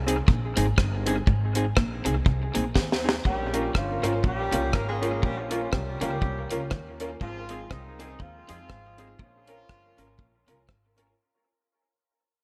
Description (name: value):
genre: ska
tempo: 121 BPM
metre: 4/4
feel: swing 58% on 8ths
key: Bb dorian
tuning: A4 = 439 Hz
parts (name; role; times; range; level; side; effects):
- upright bass; bass; 0.0-11.1 s; G1 to F2; -33 LUFS; equal; none
- hollow-body jazz guitar; accompaniment; 0.1-11.1 s; C4 to Bb4; -35 LUFS; equal; dub echo
- deep reggae drum kit; drums; 0.1-11.1 s; hi-hat, kick drum, rim click, snare drum; -27 LUFS; equal; dub echo
- electric guitar at the edge of break-up; riff; 0.3-10.9 s; G2 to F3; -38 LUFS; equal; phaser, dub echo
- dark horn section; melody; 3.3-10.7 s; Eb3 to Bb4; -36 LUFS; equal; dub echo
- clear upright piano; stabs; 3.5-11.1 s; Bb3 to Bb4; -37 LUFS; equal; dub echo
room: light reverb, small room ambience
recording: none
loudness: -26 LUFS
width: mono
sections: 0.0-11.2 A section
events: fade-out 0.0-11.2; drum fill 2.8-3.3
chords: 0.0 Ab; 3.3 Bbm; 7.2 Ab; 9.2 Bbm